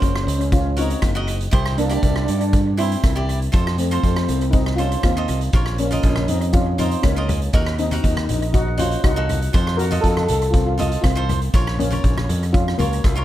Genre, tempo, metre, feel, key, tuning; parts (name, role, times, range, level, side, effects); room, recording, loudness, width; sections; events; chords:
calypso; 120 BPM; 4/4; straight; Bb harmonic minor; A4 = 442 Hz
steel pan; melody; 0.0-13.2 s; Gb3 to Bb4; -23 LUFS; left 1 dB; tape echo
cavaquinho; accompaniment; 0.0-13.2 s; Eb4 to Eb5; -28 LUFS; right 3 dB
modern bright fingered electric bass; bass; 0.0-13.2 s; Gb1 to G2; -22 LUFS; equal
street-band drum kit; drums; 0.0-13.2 s; hi-hat, kick drum, rim click; -21 LUFS; equal
congas; percussion; 5.9-12.9 s; -29 LUFS; left 1 dB
light reverb; echo-heavy mix; -17 LUFS; side -13 dB against mid
0.0-13.2 A section
0.0 Gb; 1.5 C; 3.5 F7; 5.5 Bbm; 7.5 Ebm; 9.5 F7; 11.5 Bbm